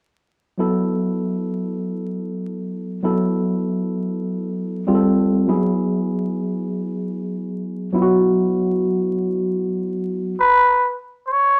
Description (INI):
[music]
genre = hip hop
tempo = free time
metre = none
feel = none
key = F# minor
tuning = A4 = 440 Hz
[part]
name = tine electric piano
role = accompaniment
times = 0.6-10.4 s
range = F#3 to A4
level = -22 LUFS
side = equal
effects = none
[part]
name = trumpet with cup mute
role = melody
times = 10.4-11.6 s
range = B4 to C#5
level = -16 LUFS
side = equal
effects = none
[sound]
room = wet studio reverb, RT60 0.7 s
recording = vinyl crackle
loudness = -21 LUFS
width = mono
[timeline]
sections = 0.6-10.4 A section; 10.4-11.6 B section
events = none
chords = 0.6 F#m7; 4.9 Fadd9; 5.5 Eadd9; 10.4 N.C.